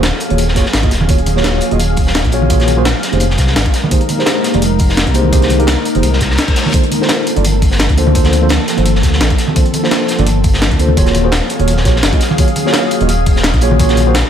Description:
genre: liquid drum and bass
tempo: 170 BPM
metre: 4/4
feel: swing 54% on 16ths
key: unclear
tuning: A4 = 440 Hz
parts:
  - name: mellow tine electric piano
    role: accompaniment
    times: 0.0-14.1 s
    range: Bb3 to Eb5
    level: -18 LUFS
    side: right 1 dB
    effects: medium stereo tremolo, digital delay
  - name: glassy FM pad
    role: sustained chords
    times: 0.0-14.3 s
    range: F3 to F5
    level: -18 LUFS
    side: left 1 dB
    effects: ensemble chorus, built-in reverb, sidechain pumping
  - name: smooth synth bass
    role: bass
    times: 0.0-14.2 s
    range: Eb1 to D2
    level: -14 LUFS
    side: equal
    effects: none
  - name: breakbeat sampler-style drum kit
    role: drums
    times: 0.0-14.2 s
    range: hi-hat, snare drum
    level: -19 LUFS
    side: left 1 dB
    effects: studio reverb
  - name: crunchy breakbeat drum kit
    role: drums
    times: 0.0-14.2 s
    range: hi-hat, snare drum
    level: -20 LUFS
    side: equal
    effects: high-pass filter on hats, studio reverb, high-pass filter on snare, high-pass filter on room
  - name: congas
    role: percussion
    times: 0.3-14.0 s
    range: none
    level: -21 LUFS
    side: right 4 dB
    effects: none
  - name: electronic kick drum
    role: drums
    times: 0.6-13.9 s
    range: none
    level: -14 LUFS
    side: equal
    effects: studio reverb
  - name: reverse cymbal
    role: sound effects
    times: 6.2-6.7 s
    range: none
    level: -22 LUFS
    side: left 2 dB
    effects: none
room: studio reverb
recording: none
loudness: -10 LUFS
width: side -9 dB against mid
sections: 0.0-14.3 A section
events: reverse cymbal 6.2-6.7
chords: 0.0 Ebm11; 3.2 Fm11; 6.7 Gm11; 11.0 Ebm11

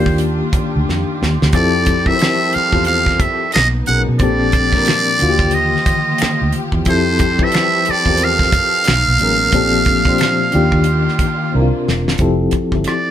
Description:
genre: R&B, neo-soul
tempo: 90 BPM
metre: 4/4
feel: swing 59% on 16ths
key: F major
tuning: A4 = 438 Hz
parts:
  - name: trumpet with metal mute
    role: melody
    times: 0.0-13.1 s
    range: C5 to F#5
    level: -16 LUFS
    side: right 2 dB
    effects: none
  - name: FM electric piano with tremolo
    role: accompaniment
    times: 0.0-13.1 s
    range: Bb2 to C5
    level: -18 LUFS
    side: left 3 dB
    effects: none
  - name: rich symphonic string section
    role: sustained chords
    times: 0.0-12.2 s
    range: C3 to A4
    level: -26 LUFS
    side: equal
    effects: none
  - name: vintage muted fingered electric bass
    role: bass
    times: 0.0-12.8 s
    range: E1 to B2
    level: -18 LUFS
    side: right 1 dB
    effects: none
  - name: damped 70s drum kit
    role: drums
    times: 0.1-13.1 s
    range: finger snaps, hi-hat, kick drum, rim click, snare drum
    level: -18 LUFS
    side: right 1 dB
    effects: none
room: light reverb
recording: band playing live in one room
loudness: -12 LUFS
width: side -10 dB against mid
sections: 0.0-12.2 A section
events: drum fill 0.9-1.5, 11.5-12.2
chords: 0.0 Ebmaj9; 1.5 Fmaj9; 3.5 Bmaj13; 4.2 Bbmaj13; 5.2 Ebmaj9; 6.9 Fmaj9; 8.9 Bmaj13; 9.5 Bbmaj13; 10.5 Ebmaj9; 11.5 C9sus4; 12.2 Fmaj9

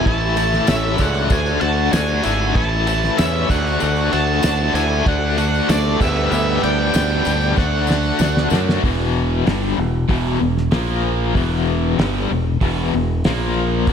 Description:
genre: classic rock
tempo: 96 BPM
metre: 4/4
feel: straight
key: unclear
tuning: A4 = 440 Hz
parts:
  - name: octave-fuzz lead guitar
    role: melody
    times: 0.0-8.5 s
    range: D5 to A5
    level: -23 LUFS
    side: equal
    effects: distortion, slapback echo
  - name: octave-fuzz lead guitar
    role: second line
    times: 0.0-8.5 s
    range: A3 to F#4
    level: -26 LUFS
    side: right 3 dB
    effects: distortion, slapback echo, analog delay
  - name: cranked stack guitar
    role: riff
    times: 0.0-13.9 s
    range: E2 to G4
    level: -23 LUFS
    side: left 11 dB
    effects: overdrive, tremolo, slapback echo
  - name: crunchy overdriven guitar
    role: riff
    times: 0.0-13.9 s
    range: E2 to G4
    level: -27 LUFS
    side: right 11 dB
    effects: phaser
  - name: overdriven electric guitar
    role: riff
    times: 0.0-13.9 s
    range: E2 to D4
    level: -25 LUFS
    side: equal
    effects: slapback echo
  - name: fingered electric bass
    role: bass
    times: 0.1-13.9 s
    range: E1 to F#2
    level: -21 LUFS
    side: equal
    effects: none
  - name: cloth-damped thuddy drum kit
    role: drums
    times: 0.1-13.9 s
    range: crash cymbal, hi-hat, kick drum, ride cymbal, snare drum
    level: -22 LUFS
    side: equal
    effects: none
  - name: tambourine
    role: percussion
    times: 0.4-8.7 s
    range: none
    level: -37 LUFS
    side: left 13 dB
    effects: none
room: moderate lush hall reverb, RT60 2.1 s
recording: big arena sound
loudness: -16 LUFS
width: side -7 dB against mid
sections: 0.0-8.8 A section; 8.8-13.9 B section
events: drum fill 7.6-8.8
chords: 0.1 A; 1.3 D; 2.6 A; 3.5 D; 6.0 G/D; 7.6 D; 8.8 E5; 10.7 A#5; 11.4 E5; 13.2 A#5

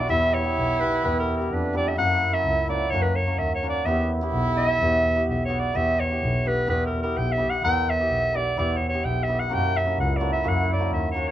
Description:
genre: klezmer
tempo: 127 BPM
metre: 2/4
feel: straight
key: E dorian sharp4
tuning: A4 = 435 Hz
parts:
  - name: bright clarinet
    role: melody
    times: 0.0-11.3 s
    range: A#4 to G5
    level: -24 LUFS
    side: equal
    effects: none
  - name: bright trombone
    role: second line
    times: 0.0-5.5, 9.5-11.3 s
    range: D4 to F#4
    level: -29 LUFS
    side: right 3 dB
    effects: none
  - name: hammered dulcimer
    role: accompaniment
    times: 0.0-11.3 s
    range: G3 to A#4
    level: -29 LUFS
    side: equal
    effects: none
  - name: dark double bass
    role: bass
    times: 0.1-11.2 s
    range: B1 to F#2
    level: -26 LUFS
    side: equal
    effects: none
room: moderate small room reverb, RT60 0.5 s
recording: band playing live in one room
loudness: -21 LUFS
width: side -12 dB against mid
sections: 0.0-5.7 A section; 5.7-11.3 A section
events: none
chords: 0.0 Em; 2.0 F#; 3.9 Em; 9.5 F#

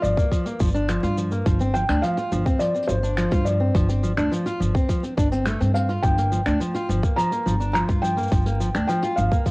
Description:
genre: folktronica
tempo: 105 BPM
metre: 4/4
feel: straight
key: G minor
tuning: A4 = 440 Hz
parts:
  - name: felt-muted upright piano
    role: melody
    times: 0.0-9.5 s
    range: C5 to Bb5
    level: -26 LUFS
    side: equal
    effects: cassette tape, tape echo
  - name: fingerpicked steel-string acoustic guitar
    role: arpeggios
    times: 0.0-9.5 s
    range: F3 to F4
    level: -25 LUFS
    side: equal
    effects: none
  - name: upright bass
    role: bass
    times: 0.0-9.3 s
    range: G1 to G2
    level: -24 LUFS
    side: equal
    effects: transformer saturation
  - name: jazz brush drum kit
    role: drums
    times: 0.0-9.5 s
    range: finger snaps, hi-hat, shaker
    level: -34 LUFS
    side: equal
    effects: cassette tape
  - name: electronic kick drum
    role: drums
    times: 0.2-9.5 s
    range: none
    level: -22 LUFS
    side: equal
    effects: cassette tape
room: small room ambience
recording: home recording on cassette, vinyl crackle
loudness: -19 LUFS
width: side -25 dB against mid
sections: 0.0-9.5 A section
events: none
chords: 0.0 Gm7; 1.5 Dm7/G; 6.0 Gm7

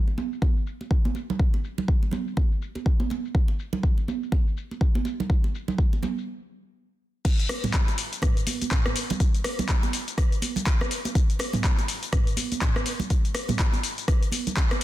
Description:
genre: house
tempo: 123 BPM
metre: 4/4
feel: swing 59% on 16ths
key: none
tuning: none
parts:
  - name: afro-pop drum kit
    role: drums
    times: 0.1-14.8 s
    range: crash cymbal, handclaps, hi-hat, rim click, shaker, toms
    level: -29 LUFS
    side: left 1 dB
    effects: overdrive, low-pass filter on perc, low-pass filter on hats, low-pass filter on cymbals, low-pass filter on snare, low-pass filter on toms, low-pass filter on room
  - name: congas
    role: percussion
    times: 0.1-14.8 s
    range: none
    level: -31 LUFS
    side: right 4 dB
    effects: none
  - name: electronic kick drum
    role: drums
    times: 0.4-14.7 s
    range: none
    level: -22 LUFS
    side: equal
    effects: none
room: little or no reverb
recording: dense, heavily limited modern master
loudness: -23 LUFS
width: side -15 dB against mid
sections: 0.0-7.2 A section; 7.2-14.8 B section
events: stop 6.3-7.2; drop 7.2-14.8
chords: none

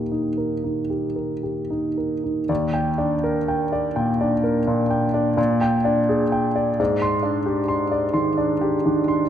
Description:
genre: classical, impressionist solo piano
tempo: 37-45 BPM (dotted quarters)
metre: 9/8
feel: rubato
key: Eb major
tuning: A4 = 440 Hz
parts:
  - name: clear grand piano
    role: solo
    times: 0.0-9.3 s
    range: Eb2 to C6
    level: -19 LUFS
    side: equal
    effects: none
room: wet concert hall reverb, RT60 2.0 s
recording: none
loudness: -19 LUFS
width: side -9 dB against mid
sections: 0.0-2.5 A section; 2.5-9.3 A section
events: none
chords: 0.0 Eb; 2.5 Ebmaj7; 5.4 Bb6; 6.8 Abmaj7#11

